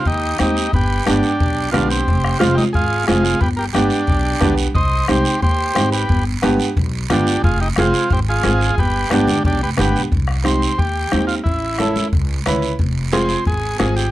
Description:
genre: latin, cumbia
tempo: 179 BPM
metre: 4/4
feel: straight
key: unclear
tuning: A4 = 441 Hz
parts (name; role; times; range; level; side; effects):
- overdriven combo organ; melody; 0.0-14.1 s; C4 to Eb5; -20 LUFS; right 1 dB; none
- upright bass; bass; 0.1-14.1 s; F1 to Eb2; -21 LUFS; equal; none
- bombo; percussion; 0.1-14.0 s; none; -21 LUFS; left 1 dB; none
- guiro; percussion; 0.1-14.1 s; none; -29 LUFS; right 8 dB; none
- bright upright piano; accompaniment; 0.4-14.0 s; Ab3 to B4; -20 LUFS; right 2 dB; none
- congas; percussion; 0.4-14.0 s; none; -25 LUFS; left 2 dB; none
room: light reverb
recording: dry, close 1970s-style studio recording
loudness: -15 LUFS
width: side -15 dB against mid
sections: 0.0-10.1 A section; 10.1-14.1 B section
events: none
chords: 0.0 Cm; 0.7 G; 2.1 Fm; 3.4 G; 4.8 Cm; 6.1 G7; 7.4 Fm; 8.8 G; 10.1 Cm; 11.5 A; 12.8 Fm

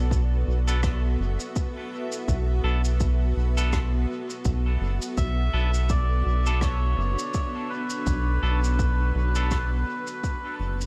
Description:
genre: ambient dub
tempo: 83 BPM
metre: 4/4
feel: swing 57% on 16ths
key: B minor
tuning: A4 = 440 Hz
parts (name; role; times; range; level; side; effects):
- granular cloud pad; sustained chords; 0.0-10.9 s; B3 to E5; -36 LUFS; equal; built-in reverb
- round analog bass; bass; 0.0-10.9 s; F#1 to B1; -26 LUFS; equal; tube saturation
- electronic kick drum; drums; 0.1-10.4 s; none; -30 LUFS; equal; overdrive
- shaker and rim click; drums; 0.1-10.9 s; none; -42 LUFS; equal; dub echo
- clean electric guitar; stabs; 0.7-9.6 s; B3 to A4; -39 LUFS; equal; dub echo
- melodica; melody; 5.2-10.6 s; B4 to E5; -34 LUFS; equal; dub echo
room: small room ambience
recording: none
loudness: -25 LUFS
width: mono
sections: 0.0-10.9 A section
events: fade-out 9.0-10.9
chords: 0.0 Bm7

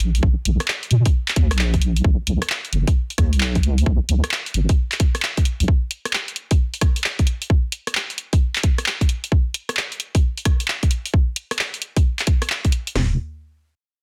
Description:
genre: UK garage, two-step garage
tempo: 132 BPM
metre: 4/4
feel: swing 65% on 16ths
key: unclear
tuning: A4 = 441 Hz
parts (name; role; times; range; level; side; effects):
- deep soft wobble bass; bass; 0.0-5.7, 13.0-13.2 s; Eb1 to Bb2; -20 LUFS; equal; chorus
- punchy analog drum machine; drums; 0.0-12.9 s; handclaps, hi-hat, rim click; -25 LUFS; equal; none
- garage drum kit; drums; 0.2-13.1 s; hi-hat, kick drum, snare drum, toms; -20 LUFS; equal; none
room: little or no reverb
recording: dense, heavily limited modern master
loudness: -20 LUFS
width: mono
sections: 0.0-13.0 A section; 13.0-14.0 B section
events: none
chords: none

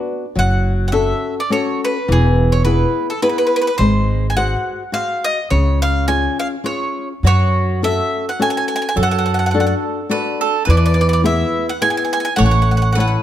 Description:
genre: italian folk, Italian serenade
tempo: 105 BPM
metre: 3/4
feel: straight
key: F# minor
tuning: A4 = 440 Hz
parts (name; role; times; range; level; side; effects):
- flamenco guitar; accompaniment; 0.0-13.2 s; C#3 to C#5; -20 LUFS; left 3 dB; none
- bowl-back mandolin; melody; 0.4-13.2 s; G#4 to G#5; -20 LUFS; right 1 dB; none
- upright bass; bass; 0.4-13.1 s; E1 to F#2; -16 LUFS; equal; none
- mandolin; second line; 7.3-13.2 s; F#4 to C#5; -22 LUFS; right 7 dB; none
room: light reverb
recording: close, detailed microphones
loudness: -14 LUFS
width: side -11 dB against mid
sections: 0.0-13.2 A section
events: none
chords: 0.4 F#m; 2.1 E; 3.8 G#7; 5.5 C#; 7.2 F#m; 9.0 D/F#; 10.7 E; 12.4 A

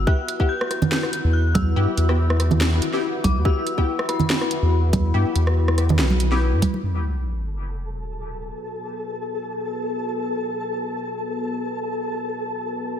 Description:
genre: deep dubstep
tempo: 142 BPM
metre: 4/4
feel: swing 55% on 16ths, half-time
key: unclear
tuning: A4 = 436 Hz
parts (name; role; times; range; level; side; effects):
- dark analog pad; sustained chords; 0.0-13.0 s; B3 to B4; -29 LUFS; left 3 dB; chorus
- soft dub sub bass; bass; 0.0-6.6 s; B1 to G2; -19 LUFS; equal; tube saturation
- dark detuned synth bell; melody; 0.1-6.4 s; B5 to G6; -31 LUFS; left 2 dB; chorus, dub echo
- filtered dub chord stab; stabs; 0.1-6.4 s; B3 to G4; -30 LUFS; left 3 dB; phaser, analog chorus, cassette tape, dub echo
- electronic kick drum; drums; 0.1-6.7 s; none; -21 LUFS; equal; overdrive
- garage drum kit; drums; 0.3-6.7 s; hi-hat, rim click, snare drum; -26 LUFS; equal; overdrive, low-pass filter on cymbals, low-pass filter on hats, low-pass filter on snare
- congas; percussion; 0.8-6.8 s; none; -25 LUFS; right 4 dB; dub echo
- sub drop; sound effects; 6.8-8.5 s; none; -27 LUFS; equal; none
- flickering grainy texture; texture; 7.7-13.0 s; A4 to A5; -28 LUFS; left 1 dB; built-in reverb
room: moderate lush hall reverb, RT60 1.8 s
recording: dreamy mix soaked in reverb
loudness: -20 LUFS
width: side -9 dB against mid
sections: 0.0-6.8 A section; 6.8-13.0 B section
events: drop 0.0-6.8; impact 6.8-8.5; filter sweep on analog synth pad 6.8-13.0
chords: 0.1 Em; 6.8 B5

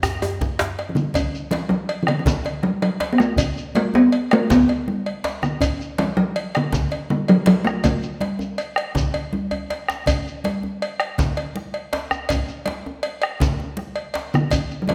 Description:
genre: west african traditional, West African drum ensemble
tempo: 108 BPM (dotted quarters)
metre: 12/8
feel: straight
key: D major pentatonic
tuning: A4 = 438 Hz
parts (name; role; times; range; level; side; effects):
- talking drum; melody; 0.0-8.9, 14.3-14.9 s; D3 to B3; -21 LUFS; equal; none
- bombo; percussion; 0.0-14.7 s; none; -28 LUFS; equal; none
- djembe; percussion; 0.0-14.9 s; none; -31 LUFS; equal; none
- djembe; percussion; 0.0-0.8 s; none; -27 LUFS; equal; none
- shekere; percussion; 0.0-14.8 s; none; -34 LUFS; equal; none
- congas; percussion; 0.2-14.9 s; none; -31 LUFS; equal; none
- cowbell; percussion; 0.2-14.9 s; none; -30 LUFS; equal; none
room: wet recital hall reverb, RT60 1.4 s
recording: none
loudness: -22 LUFS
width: mono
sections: 0.0-1.1 A section; 1.1-14.9 B section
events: drum fill 0.0-1.1, 9.1-10.1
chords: none

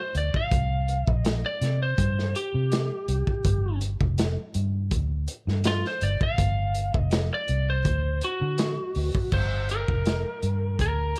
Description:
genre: straight-eighth soul blues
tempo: 82 BPM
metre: 4/4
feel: straight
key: G minor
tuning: A4 = 440 Hz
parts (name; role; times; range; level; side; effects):
- lightly driven lead guitar; melody; 0.0-11.2 s; F4 to F5; -32 LUFS; equal; none
- vintage muted fingered electric bass; bass; 0.1-11.1 s; F1 to D3; -28 LUFS; equal; none
- crunchy breakbeat drum kit; drums; 0.1-11.2 s; crash cymbal, hi-hat, kick drum, snare drum; -30 LUFS; equal; none
room: little or no reverb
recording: lossy compression artefacts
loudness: -26 LUFS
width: mono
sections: 0.0-9.3 A section; 9.3-11.2 B section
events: lead electric guitar solo 0.0-9.3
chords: 0.0 D5; 0.5 C5; 3.5 G5; 7.9 D; 9.3 Gm7

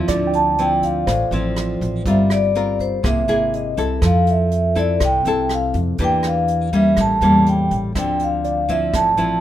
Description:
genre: bossa nova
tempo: 122 BPM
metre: 4/4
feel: straight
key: unclear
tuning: A4 = 440 Hz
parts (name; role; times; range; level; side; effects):
- barky tine electric piano; accompaniment; 0.0-9.4 s; F4 to G5; -26 LUFS; right 3 dB; medium stereo tremolo
- nylon-string guitar; accompaniment; 0.0-9.4 s; A2 to Bb4; -20 LUFS; left 2 dB; none
- upright bass; bass; 0.0-9.4 s; G1 to F2; -22 LUFS; right 1 dB; none
- jazz brush drum kit; drums; 0.1-9.3 s; hi-hat, kick drum, rim click; -28 LUFS; right 1 dB; none
- vibraphone with medium mallets; melody; 0.4-9.4 s; C5 to A5; -19 LUFS; equal; none
room: moderate studio reverb, RT60 0.8 s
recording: minimal, uncompressed stereo recording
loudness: -16 LUFS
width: side -12 dB against mid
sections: 0.0-8.0 A section; 8.0-9.4 A section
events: vibraphone solo 0.0-9.4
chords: 0.1 Dm9; 2.1 Gm7; 3.0 Caug7; 4.0 Fmaj7; 6.0 Em7b5; 7.0 A7b9; 8.0 Dm9

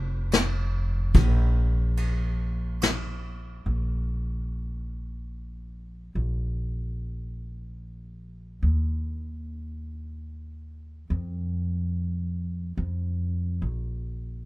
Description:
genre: acoustic folk-pop ballad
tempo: 72 BPM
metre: 3/4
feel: straight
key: unclear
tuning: A4 = 440 Hz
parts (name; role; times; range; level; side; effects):
- upright bass; bass; 0.0-14.5 s; F1 to F2; -27 LUFS; equal; none
- soft brush drum kit; drums; 0.3-3.0 s; kick drum, ride cymbal, snare drum; -23 LUFS; left 2 dB; none
room: little or no reverb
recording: minimal, uncompressed stereo recording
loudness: -25 LUFS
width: side -18 dB against mid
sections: 0.0-3.7 A section; 3.7-13.6 B section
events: none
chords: none

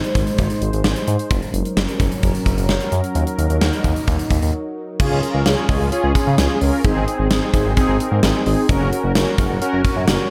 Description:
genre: synth-pop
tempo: 130 BPM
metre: 4/4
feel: straight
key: Db major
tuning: A4 = 440 Hz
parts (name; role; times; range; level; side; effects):
- sweeping resonant pad; sustained chords; 0.0-5.0 s; Gb3 to C5; -27 LUFS; equal; chorus
- gated 80s drum kit; drums; 0.0-10.2 s; crash cymbal, hi-hat, kick drum, snare drum; -22 LUFS; equal; tape echo
- smooth synth bass; bass; 0.2-10.2 s; Gb1 to Db3; -23 LUFS; equal; none
- mellow synth brass; accompaniment; 5.0-10.3 s; C4 to Bb4; -22 LUFS; equal; chorus, tape echo
room: moderate spring reverb, RT60 1.2 s, small room ambience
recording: echo-heavy mix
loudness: -18 LUFS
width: mono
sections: 0.0-5.0 A section; 5.0-10.3 B section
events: break 4.5-5.0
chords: 0.0 Ab; 1.3 Gb; 3.2 Ebm; 5.0 Db; 6.8 Ab; 8.7 Gb

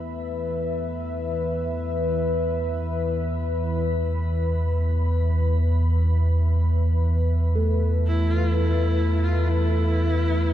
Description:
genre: dark ambient drone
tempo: free time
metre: none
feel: none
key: unclear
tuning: A4 = 440 Hz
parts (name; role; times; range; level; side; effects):
- dark analog pad; sustained chords; 0.0-10.5 s; E3 to B5; -27 LUFS; left 3 dB; chorus, shimmer reverb
- deep rumbling drone; drone; 0.3-10.5 s; E2; -22 LUFS; right 1 dB; built-in reverb
- quartz singing bowl; texture; 0.0-10.5 s; A3 to A4; -33 LUFS; equal; shimmer reverb
- clear horsehead fiddle; melody; 8.1-10.5 s; E4 to F4; -27 LUFS; left 1 dB; shimmer reverb, diffuse ambient delay
room: moderate huge ambient reverb, RT60 7.9 s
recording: in a vast, echoing space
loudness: -21 LUFS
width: side -12 dB against mid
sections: 0.0-10.5 A section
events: fade-out on analog synth pad 0.0-10.5; filter sweep on synth drone 0.0-10.5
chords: 0.0 E5

